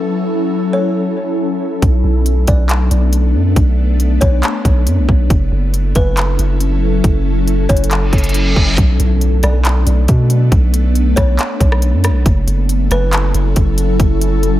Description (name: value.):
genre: hip hop, atmospheric cloud-rap.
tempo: 138 BPM.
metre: 4/4.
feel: half-time.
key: B minor.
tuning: A4 = 440 Hz.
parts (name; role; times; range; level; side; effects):
kalimba; melody; 0.0-14.0 s; B4 to D5; -24 LUFS; left 1 dB; analog delay.
ethereal airy pad; sustained chords; 0.0-14.6 s; F#3 to A4; -19 LUFS; left 1 dB; ensemble chorus, built-in reverb, sidechain pumping.
long sustained 808-style bass; bass; 1.8-14.6 s; F#1 to B2; -13 LUFS; equal; none.
trap drum kit; drums; 1.8-14.5 s; handclaps, hi-hat, kick drum, rim click; -15 LUFS; equal; none.
reverse cymbal and impact; sound effects; 8.1-10.5 s; none; -22 LUFS; right 1 dB; none.
room: light reverb, digital ambience.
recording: none.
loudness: -11 LUFS.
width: side -14 dB against mid.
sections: 0.0-8.8 A section; 8.8-14.6 B section.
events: reverse cymbal 8.1-8.8; impact 8.8-10.5.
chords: 0.0 F#m7; 1.8 Bm7; 5.3 F#m7; 8.8 Bm7; 12.3 F#m7.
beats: | 0.09 0.52 0.95 1.39 | 1.82 2.26 2.69 3.13 | 3.56 4.00 4.43 4.87 | 5.30 5.74 6.17 6.61 | 7.04 7.48 7.91 8.35 | 8.78 9.21 9.65 10.09 | 10.52 10.95 11.39 11.82 | 12.26 12.69 13.13 13.56 | 14.00 14.43.